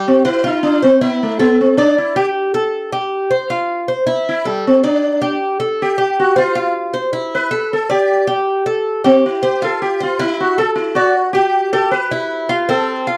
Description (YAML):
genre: latin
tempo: 157 BPM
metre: 4/4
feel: straight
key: unclear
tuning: A4 = 437 Hz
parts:
  - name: sitar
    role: melody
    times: 0.0-13.2 s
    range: G3 to B4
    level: -18 LUFS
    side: equal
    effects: none
  - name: Cuban tres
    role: arpeggios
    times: 0.0-13.2 s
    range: C4 to D5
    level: -19 LUFS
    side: equal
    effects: slapback echo
room: moderate booth ambience, RT60 0.2 s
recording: dry, close 1970s-style studio recording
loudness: -16 LUFS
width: mono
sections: 0.0-11.2 A section; 11.2-13.2 B section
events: sitar solo 0.0-11.2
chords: 0.4 F5; 1.2 Amadd11; 2.0 G5; 2.7 C5; 3.5 F5; 4.3 C69/G; 5.0 G5; 5.8 C5; 6.6 F5; 7.3 Emadd11; 8.1 G5; 8.9 C5; 9.6 F5; 10.4 E9sus4; 11.2 N.C.; 11.9 Em